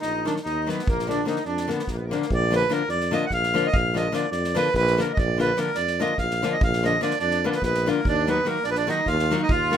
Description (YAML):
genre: balkan folk, Balkan wedding band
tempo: 292 BPM (eighths)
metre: 7/8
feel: straight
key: unclear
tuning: A4 = 441 Hz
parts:
  - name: accordion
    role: melody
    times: 0.0-9.8 s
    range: Bb3 to Gb5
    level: -24 LUFS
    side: right 2 dB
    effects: none
  - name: accordion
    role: second line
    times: 0.0-2.3, 7.2-9.8 s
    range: Bb3 to Eb5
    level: -31 LUFS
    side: right 3 dB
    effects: light tremolo tuning
  - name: mellow tuba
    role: bass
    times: 0.0-9.8 s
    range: Bb1 to F2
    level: -27 LUFS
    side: right 1 dB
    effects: none
  - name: unplugged drum kit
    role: percussion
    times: 0.0-9.8 s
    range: kick drum, snare drum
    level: -30 LUFS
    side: equal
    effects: none
  - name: nylon-string guitar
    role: accompaniment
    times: 0.3-9.8 s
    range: D3 to Gb4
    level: -26 LUFS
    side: left 5 dB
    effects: none
room: light reverb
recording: minimal, uncompressed stereo recording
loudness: -21 LUFS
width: side -9 dB against mid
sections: 0.0-2.3 A section; 2.3-9.8 B section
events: none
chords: 0.0 Ebm; 0.9 Bb; 8.1 Ebm